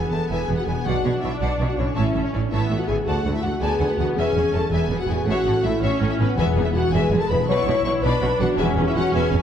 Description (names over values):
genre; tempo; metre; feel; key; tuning
cinematic, heroic adventure film score; 109 BPM (dotted quarters); 12/8; straight; E mixolydian; A4 = 440 Hz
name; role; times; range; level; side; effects
warm symphonic violin section; melody; 0.0-9.4 s; B4 to C#6; -32 LUFS; left 3 dB; none
rich symphonic viola section; accompaniment; 0.0-9.4 s; G#3 to E4; -29 LUFS; equal; none
mellow French horn section; sustained chords; 0.0-9.4 s; B3 to C#5; -24 LUFS; left 1 dB; none
concert harp; arpeggios; 0.0-9.4 s; A2 to C#5; -30 LUFS; left 6 dB; none
warm symphonic violin section; second line; 0.1-9.4 s; D4 to A5; -30 LUFS; left 3 dB; none
rich symphonic cello section; bass; 0.1-9.4 s; D2 to B2; -26 LUFS; right 3 dB; none
rich symphonic double bass section; bass; 0.1-9.4 s; E1 to D2; -26 LUFS; right 3 dB; none
timpani; percussion; 0.9-1.4, 6.4-9.1 s; E2 to B2; -29 LUFS; left 2 dB; none
room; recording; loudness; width
wet scoring stage reverb, RT60 1.7 s; none; -19 LUFS; side -9 dB against mid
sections
0.0-9.4 A section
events
none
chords
0.0 E; 0.9 Bmadd9; 2.0 A; 3.1 D; 4.2 E; 5.3 A; 6.4 E; 7.5 Bmadd9; 8.6 E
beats
0.30 0.85 1.41 | 1.96 2.52 3.07 3.62 | 4.18 4.73 5.28 5.83 | 6.38 6.93 7.48 8.04 | 8.59 9.14